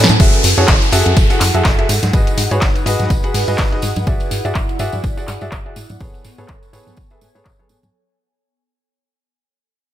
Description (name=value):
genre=piano house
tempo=124 BPM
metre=4/4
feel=swing 56% on 16ths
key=unclear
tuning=A4 = 440 Hz
part: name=plucky analog bass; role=bass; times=0.0-7.9 s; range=F#1 to A2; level=-18 LUFS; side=equal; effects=sidechain pumping
part: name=house drum kit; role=drums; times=0.0-7.9 s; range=handclaps, hi-hat, shaker, snare drum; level=-19 LUFS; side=left 1 dB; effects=low-pass filter on hats, small room ambience, low-pass filter on perc, low-pass filter on snare
part: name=airy breathy pad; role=texture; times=0.0-7.9 s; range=B3 to G#5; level=-24 LUFS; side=right 2 dB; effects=chorus, phaser, sidechain pumping
part: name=tambourine and congas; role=percussion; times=0.1-7.9 s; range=none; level=-26 LUFS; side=right 2 dB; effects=none
part: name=bright concert grand piano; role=riff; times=0.2-7.7 s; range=F#4 to F#5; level=-21 LUFS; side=equal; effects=sidechain pumping, low-pass filter, tape echo
part: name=electronic kick drum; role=drums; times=0.2-7.6 s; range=none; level=-15 LUFS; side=equal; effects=small room ambience
part: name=street-band drum kit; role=drums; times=0.2-4.0 s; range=hi-hat, snare drum, tambourine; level=-28 LUFS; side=equal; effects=none
part: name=downlifter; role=sound effects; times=0.2-4.1 s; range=none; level=-22 LUFS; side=equal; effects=none
room=light reverb, small room ambience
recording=none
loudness=-12 LUFS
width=side -12 dB against mid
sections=0.2-7.9 A section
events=break 0.0; drum fill 0.0; band accent 0.0; fade-out 0.2-7.9; filter sweep on drum 0.2-7.9; filter sweep on analog synth bass 0.2-7.9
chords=0.2 F#m9; 1.9 G#m7; 4.1 E9/G#; 5.8 Amaj9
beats=| 0.20 0.68 1.17 1.65 | 2.13 2.62 3.10 3.59 | 4.07 4.55 5.04 5.52 | 6.00 6.49 6.97 7.46